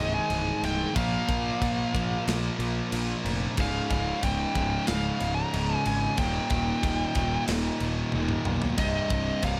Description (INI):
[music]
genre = heavy metal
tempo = 92 BPM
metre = 4/4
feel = straight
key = unclear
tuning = A4 = 445 Hz
[part]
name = high-gain lead guitar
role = melody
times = 0.0-9.6 s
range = Eb5 to Bb5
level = -33 LUFS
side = equal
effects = distortion
[part]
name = distorted electric guitar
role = riff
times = 0.0-9.6 s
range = C2 to Bb3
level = -34 LUFS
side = equal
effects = overdrive
[part]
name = distorted electric guitar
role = riff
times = 0.0-9.6 s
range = C2 to Bb3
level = -38 LUFS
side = equal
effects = overdrive
[part]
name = high-gain distorted guitar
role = riff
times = 0.0-9.6 s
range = C2 to Bb3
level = -38 LUFS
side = equal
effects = distortion
[part]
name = fuzz picked electric bass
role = bass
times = 0.0-9.6 s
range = C1 to B1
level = -33 LUFS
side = equal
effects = overdrive
[part]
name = tight metal drum kit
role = drums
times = 0.3-9.6 s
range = crash cymbal, kick drum, snare drum, splash cymbal, toms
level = -35 LUFS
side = equal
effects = none
[sound]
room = little or no reverb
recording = none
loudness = -27 LUFS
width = mono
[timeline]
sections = 0.0-9.6 A section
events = half time 0.0-9.6; drum fill 8.1-8.8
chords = 0.0 Ab/C; 1.0 Bb5; 3.6 Db; 6.2 Eb; 8.8 Cm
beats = 0.31 | 0.96 1.61 2.27 2.92 | 3.57 4.22 4.88 5.53 | 6.18 6.83 7.48 8.13 | 8.78 9.43